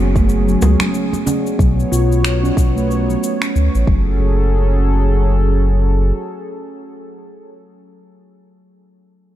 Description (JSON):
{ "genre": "organic downtempo", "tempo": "92 BPM", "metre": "4/4", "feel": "swing 59% on 16ths", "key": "F# minor", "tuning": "A4 = 440 Hz", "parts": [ { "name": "warm analog pad", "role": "sustained chords", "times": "0.0-7.5 s", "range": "F#3 to C#5", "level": "-23 LUFS", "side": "equal", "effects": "chorus, sidechain pumping" }, { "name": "steel tongue drum", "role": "arpeggios", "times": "0.0-4.5 s", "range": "F#3 to F#4", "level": "-21 LUFS", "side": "equal", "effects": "low-pass filter, ping-pong delay" }, { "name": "smooth synth bass", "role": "bass", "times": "0.0-6.1 s", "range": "F#1 to D2", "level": "-15 LUFS", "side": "equal", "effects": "tube saturation" }, { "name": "impact", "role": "sound effects", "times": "0.0-1.6 s", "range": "none", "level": "-36 LUFS", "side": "equal", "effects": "none" }, { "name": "electronic cabasa and finger snaps", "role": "drums", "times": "0.2-3.9 s", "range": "none", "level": "-26 LUFS", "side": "left 1 dB", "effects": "small room ambience" }, { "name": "electronic kick drum", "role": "drums", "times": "0.2-4.0 s", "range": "none", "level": "-16 LUFS", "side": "equal", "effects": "small room ambience" }, { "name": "congas and bongos", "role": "percussion", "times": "0.6-1.4 s", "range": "none", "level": "-25 LUFS", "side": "right 4 dB", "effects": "none" } ], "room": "digital ambience", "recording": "none", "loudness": "-13 LUFS", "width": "side -13 dB against mid", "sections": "0.0-4.2 A section; 4.2-6.8 B section", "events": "impact 0.0-1.6; filter sweep on analog synth bass 0.0-4.2; filter sweep on steel tongue drum 0.0-4.2", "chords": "0.0 F#sus2; 1.6 B5; 3.9 F#madd9", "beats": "0.29 0.94 | 1.59 2.25 2.90 3.55 | 4.20 4.86 5.51 6.16" }